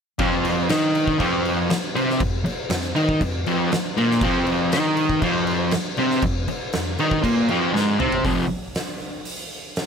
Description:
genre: garage rock duo or trio.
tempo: 119 BPM.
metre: 4/4.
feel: straight.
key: unclear.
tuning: A4 = 440 Hz.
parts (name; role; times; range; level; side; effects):
fuzz guitar; riff; 0.2-8.4 s; F2 to Eb4; -20 LUFS; equal; distortion.
oversized low-tuned drum kit; drums; 0.2-9.9 s; crash cymbal, hi-hat, kick drum, snare drum, toms; -25 LUFS; equal; none.
room: light reverb.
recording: none.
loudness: -19 LUFS.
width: side -6 dB against mid.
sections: 0.2-8.2 A section; 8.2-9.9 B section.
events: drum fill 7.7-8.2.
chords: 0.2 F5.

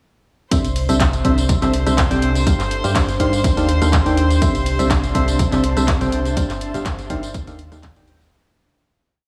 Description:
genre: piano house.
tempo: 123 BPM.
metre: 4/4.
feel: swing 53% on 16ths.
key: C major.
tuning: A4 = 440 Hz.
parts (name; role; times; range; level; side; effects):
warm chamber string section; sustained chords; 0.5-8.3 s; C5 to C6; -29 LUFS; equal; sidechain pumping.
barking FM electric piano; riff; 0.5-8.2 s; C3 to G5; -24 LUFS; equal; chorus, cassette tape, sidechain pumping, diffuse ambient delay.
solid FM bass; bass; 0.5-8.3 s; G1 to G2; -24 LUFS; equal; sidechain pumping.
breakbeat sampler-style drum kit; drums; 0.5-8.2 s; hi-hat, snare drum; -37 LUFS; equal; none.
electronic kick drum; drums; 0.5-7.9 s; none; -23 LUFS; equal; studio reverb.
house drum kit; drums; 0.5-8.3 s; handclaps, hi-hat, rim click, tambourine; -28 LUFS; equal; studio reverb.
granular cloud pad; texture; 1.8-8.3 s; D4 to C6; -32 LUFS; equal; built-in reverb, analog chorus, sidechain pumping.
room: moderate lush hall reverb, RT60 1.6 s, digital ambience.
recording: dreamy mix soaked in reverb, small room ambience.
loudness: -18 LUFS.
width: mono.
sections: 0.5-8.3 drop.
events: drop 0.5-8.3; fade-out 5.7-8.3.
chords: 0.5 C69; 2.5 G7sus4; 3.4 Ebmaj9#11; 4.4 C69; 6.4 G7sus4.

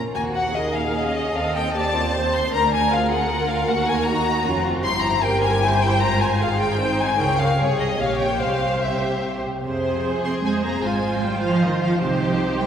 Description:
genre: quick classical-period movement for string orchestra.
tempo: 153 BPM.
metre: 3/4.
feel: rubato.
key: F minor from 4.8 s.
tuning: A4 = 440 Hz.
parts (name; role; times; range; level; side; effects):
rich studio violin section; melody; 0.0-12.7 s; F4 to C6; -23 LUFS; left 3 dB; none.
rich studio cello section; bass; 0.0-12.7 s; D2 to C4; -25 LUFS; right 2 dB; none.
rich studio violin section; second line; 0.1-12.7 s; Bb3 to C6; -26 LUFS; left 1 dB; none.
warm studio double bass section; bass; 0.1-12.7 s; F1 to F2; -28 LUFS; right 2 dB; none.
rich studio viola section; accompaniment; 0.5-12.7 s; Eb4 to Eb5; -27 LUFS; right 2 dB; none.
room: wet cathedral reverb, RT60 4.2 s.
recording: recorded in a church or concert hall.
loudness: -19 LUFS.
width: side -8 dB against mid.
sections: 0.1-9.6 A section; 9.6-12.7 B section.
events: none.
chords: 0.1 Ebm; 1.4 F7/Eb; 2.5 Bb/D; 3.7 Ebm; 4.8 C7/G; 6.0 Fm/Ab; 7.2 Db5; 8.0 Gm7b5/Bb; 8.4 C; 9.6 Fm; 10.8 Fm/Ab; 12.0 Cm.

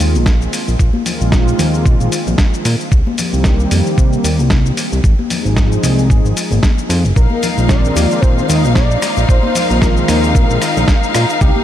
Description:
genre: nu-disco, nu disco.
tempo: 113 BPM.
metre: 4/4.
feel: swing 56% on 16ths.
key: Bb mixolydian.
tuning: A4 = 440 Hz.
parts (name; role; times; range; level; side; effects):
fat analog bass; bass; 0.0-11.5 s; F1 to C3; -15 LUFS; equal; none.
dusty soul sampler-style drum kit; drums; 0.0-11.5 s; cabasa, hi-hat, rim click, snare drum; -21 LUFS; equal; none.
congas and cabasa; percussion; 0.1-11.6 s; none; -24 LUFS; left 5 dB; none.
electronic kick drum; drums; 0.3-11.5 s; none; -12 LUFS; equal; none.
warm analog pad; accompaniment; 0.4-11.1 s; Eb3 to Ab4; -20 LUFS; equal; analog chorus, sidechain pumping, diffuse ambient delay.
wide unison lead; melody; 7.2-11.6 s; G4 to Eb5; -21 LUFS; equal; diffuse ambient delay.
clear studio string section; sustained chords; 7.2-11.6 s; Eb4 to F5; -20 LUFS; left 3 dB; sidechain pumping.
room: light reverb.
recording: none.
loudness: -11 LUFS.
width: side -11 dB against mid.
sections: 0.0-11.6 A section.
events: none.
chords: 0.0 Bb9sus4; 2.9 Cm7; 5.0 Ab6; 7.2 Bb9sus4.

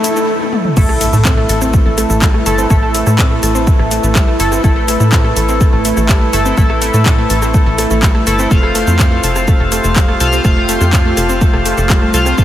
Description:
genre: melodic techno.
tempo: 124 BPM.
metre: 4/4.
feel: straight.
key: A minor.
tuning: A4 = 440 Hz.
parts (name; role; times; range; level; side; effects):
deep dark ambient pad; sustained chords; 0.0-12.4 s; A3 to B4; -21 LUFS; right 2 dB; chorus, built-in reverb, sidechain pumping.
wide unison pluck; arpeggios; 0.0-12.4 s; G3 to A5; -19 LUFS; equal; sidechain pumping, tape echo.
sync-sweep polysynth; stabs; 0.0-12.4 s; A3 to F5; -17 LUFS; left 1 dB; chorus, sidechain pumping, tape echo.
house drum kit; drums; 0.0-12.4 s; crash cymbal, handclaps, hi-hat, rim click, shaker, toms; -19 LUFS; left 1 dB; overdrive, sidechain pumping on perc, studio reverb, sidechain pumping on hats, sidechain pumping on toms, sidechain pumping on cymbals.
riser, swell and impact; sound effects; 0.0-2.7 s; none; -23 LUFS; equal; none.
tight sequencer bass; bass; 0.8-12.4 s; F1 to A2; -16 LUFS; equal; sidechain pumping.
electronic kick drum; drums; 0.8-12.4 s; none; -11 LUFS; equal; overdrive, studio reverb.
room: moderate huge ambient reverb, RT60 7.3 s.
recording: dreamy mix soaked in reverb.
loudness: -10 LUFS.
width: side -12 dB against mid.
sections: 0.8-12.4 A section.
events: riser 0.0; swell 0.0-0.8; drum fill 0.4-0.8; drop 0.8-12.4; impact 0.8-2.7.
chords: 0.0 A5; 0.8 Am7; 8.5 Fadd9.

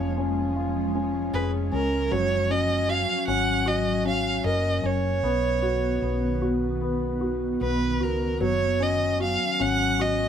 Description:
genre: pop.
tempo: 76 BPM.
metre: 4/4.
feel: straight.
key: F# major.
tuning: A4 = 439 Hz.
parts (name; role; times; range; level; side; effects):
rich violin; melody; 0.0-10.3 s; A#4 to F#5; -26 LUFS; right 2 dB; none.
warm grand piano; accompaniment; 0.0-10.3 s; E#3 to A#4; -28 LUFS; left 3 dB; none.
ethereal airy pad; sustained chords; 0.0-10.3 s; D#3 to C#4; -30 LUFS; right 1 dB; ensemble chorus, built-in reverb.
hollow-body short-scale fingered electric bass; bass; 0.0-10.3 s; E#1 to C#2; -29 LUFS; equal; none.
room: light reverb.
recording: band playing live in one room.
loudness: -22 LUFS.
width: side -8 dB against mid.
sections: 0.0-10.3 A section.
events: none.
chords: 0.0 C#/E#; 2.1 F#; 5.2 B; 8.4 F#5.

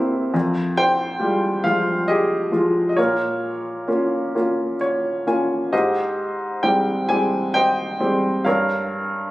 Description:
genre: classical, lyrical solo piano.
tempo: 44 BPM (dotted quarters).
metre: 6/8.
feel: rubato.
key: F minor.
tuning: A4 = 441 Hz.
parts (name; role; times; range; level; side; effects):
clear upright piano; solo; 0.0-9.3 s; F2 to Ab5; -18 LUFS; equal; none.
room: moderate scoring stage reverb, RT60 2.1 s.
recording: recorded on a phone in the room, club ambience, compression.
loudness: -18 LUFS.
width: side -17 dB against mid.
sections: 0.0-9.3 A section.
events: upright piano fill 4.3-5.7.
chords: 0.3 Fmadd9; 3.0 Bbm; 5.7 Abmaj7; 8.5 Gm7b5.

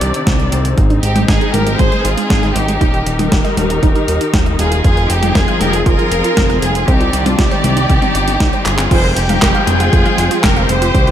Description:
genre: italo disco.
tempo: 118 BPM.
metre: 4/4.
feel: straight.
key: unclear.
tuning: A4 = 439 Hz.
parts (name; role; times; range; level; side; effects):
warm studio string section; sustained chords; 0.0-11.1 s; Eb3 to G5; -20 LUFS; left 2 dB; none.
warm electric grand piano; stabs; 0.0-1.0 s; Ab2 to C5; -25 LUFS; left 2 dB; digital delay.
fat analog bass; bass; 0.0-11.1 s; Eb1 to C2; -17 LUFS; equal; none.
clean 12-bit digital drum machine; drums; 0.0-11.1 s; crash cymbal, handclaps, hi-hat, snare drum, toms; -18 LUFS; left 1 dB; gated reverb.
electronic kick drum; drums; 0.3-11.0 s; none; -15 LUFS; equal; none.
warbly dusty pluck; arpeggios; 0.8-11.1 s; Ab3 to F5; -23 LUFS; right 5 dB; chorus, cassette tape, digital delay.
rich studio violin section; melody; 1.0-11.1 s; D4 to C5; -17 LUFS; equal; digital delay.
room: little or no reverb.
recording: none.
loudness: -11 LUFS.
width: side -10 dB against mid.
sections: 0.0-8.9 A section; 8.9-11.1 B section.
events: drum fill 8.7.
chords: 0.0 Cmadd9; 0.8 Ab; 2.8 Eb; 4.8 Fm7; 6.9 Cmadd9; 8.9 Fmadd9.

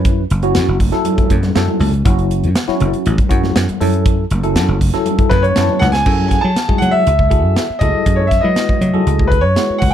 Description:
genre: electric jazz fusion.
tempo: 120 BPM.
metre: 4/4.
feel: straight.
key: F# dorian.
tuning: A4 = 440 Hz.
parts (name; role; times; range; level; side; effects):
bell-like tine electric piano; accompaniment; 0.0-9.9 s; F#3 to A5; -20 LUFS; equal; medium stereo tremolo, wide subtle chorus.
dry thumbed slap bass; bass; 0.0-9.9 s; F#1 to F#3; -16 LUFS; equal; none.
crisp fusion drum kit; drums; 0.0-9.9 s; crash cymbal, hi-hat, kick drum, snare drum; -17 LUFS; equal; none.
congas; percussion; 0.8-9.9 s; none; -24 LUFS; left 3 dB; none.
bright concert grand piano; melody; 5.3-9.9 s; B4 to A5; -16 LUFS; left 1 dB; none.
room: light reverb.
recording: dark, warm production.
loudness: -12 LUFS.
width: side -10 dB against mid.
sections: 0.0-6.1 A section; 6.1-9.9 B section.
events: tine electric piano fill 5.3-6.1; drum fill 5.8.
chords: 0.0 F#m7; 6.1 F#m9.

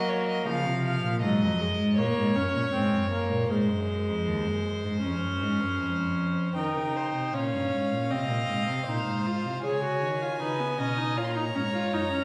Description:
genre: classical, baroque-style fugue for string quartet.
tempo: 78 BPM.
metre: 4/4.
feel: straight.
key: unclear.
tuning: A4 = 440 Hz.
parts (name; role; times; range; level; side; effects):
warm violin; melody; 0.0-12.2 s; B#4 to B#5; -36 LUFS; equal; none.
warm violin; second line; 0.0-0.4, 6.6-12.2 s; F#4 to D#5; -36 LUFS; equal; none.
warm viola; accompaniment; 0.0-12.2 s; E#3 to G#4; -32 LUFS; equal; none.
rich cello; bass; 0.0-12.2 s; D#2 to F#3; -32 LUFS; equal; none.
room: wet recital hall reverb, RT60 1.4 s.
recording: recorded in a church or concert hall.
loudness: -28 LUFS.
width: mono.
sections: 0.0-6.6 A section; 6.6-12.2 B section.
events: none.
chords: 0.5 C#; 2.0 F#; 3.5 G#7; 5.0 C#; 6.6 D#7; 8.1 G#; 9.6 C#7; 11.2 F#.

